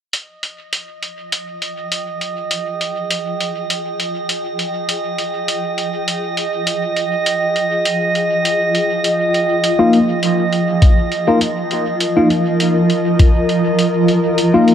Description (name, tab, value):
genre	ambient dub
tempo	101 BPM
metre	4/4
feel	straight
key	F minor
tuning	A4 = 436 Hz
part	granular cloud pad	sustained chords	1.3-14.7 s	F3 to Bb5	-19 LUFS	equal	built-in reverb, vintage 12-bit sampler grit
part	electronic hi-hat	drums	0.1-14.7 s	none	-22 LUFS	equal	overdrive
part	drifting glass-harmonics texture	texture	0.7-14.7 s	Eb5	-20 LUFS	right 3 dB	chorus, built-in reverb
part	bright tine electric piano	stabs	9.8-14.7 s	Bb3 to F4	-15 LUFS	left 2 dB	phaser, dub echo
part	electronic kick drum	drums	10.8-13.3 s	none	-10 LUFS	left 1 dB	overdrive
room	moderate lush hall reverb, RT60 1.5 s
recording	none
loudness	-15 LUFS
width	side -9 dB against mid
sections	0.1-14.7 A section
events	fade-in on ambient pad 0.1-14.7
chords	0.1 Fm7; 9.6 Ebsus2/F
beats	| 0.13 0.72 1.32 1.91 | 2.51 3.10 3.69 4.29 | 4.88 5.48 6.07 6.66 | 7.26 7.85 8.45 9.04 | 9.63 10.23 10.82 11.42 | 12.01 12.61 13.20 13.79 | 14.39